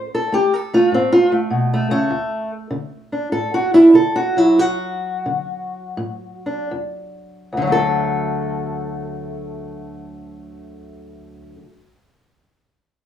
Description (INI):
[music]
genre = acoustic country blues, solo or duo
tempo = 72-101 BPM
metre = 4/4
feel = swing 66% on 8ths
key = D major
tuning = A4 = 440 Hz
[part]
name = fingerpicked steel-string acoustic guitar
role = solo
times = 0.0-11.7 s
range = D2 to A4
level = -16 LUFS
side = equal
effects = none
[sound]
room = moderate large studio reverb, RT60 0.8 s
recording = band playing live in one room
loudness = -16 LUFS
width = side -10 dB against mid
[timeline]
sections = 0.0-7.5 A section; 7.5-10.9 B section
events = steel-string acoustic guitar solo 0.0-7.5; slowing down 2.1-7.5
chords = 0.0 N.C.; 2.1 D; 6.7 Ebm; 7.5 D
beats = 0.31 0.91 1.50 | 2.10 2.70 3.31 3.93 | 4.58 5.25 5.96 6.71 | 7.52 8.35 9.18 10.02